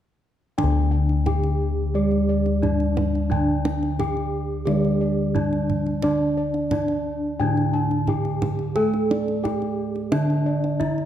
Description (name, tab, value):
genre	Javanese gamelan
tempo	88 BPM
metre	4/4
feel	straight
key	unclear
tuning	A4 = 441 Hz
part	gamelan-type bronze metallophone	melody	0.6-11.1 s	D4 to A4-40c	-27 LUFS	equal	none
part	gamelan-type bronze metallophone	accompaniment	0.6-11.1 s	D3 to A3-40c	-26 LUFS	right 5 dB	none
part	gamelan-type bossed gongs	arpeggios	0.6-11.1 s	D5 to A5-40c	-30 LUFS	left 2 dB	none
part	gamelan-type bossed gongs	bass	0.6-11.1 s	D2 to A4-40c	-24 LUFS	left 2 dB	none
part	kendang	percussion	0.6-11.1 s	none	-29 LUFS	right 4 dB	none
room	moderate scoring stage reverb, RT60 1.8 s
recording	dark, warm production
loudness	-20 LUFS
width	side -10 dB against mid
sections	0.6-11.1 A section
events	none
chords	none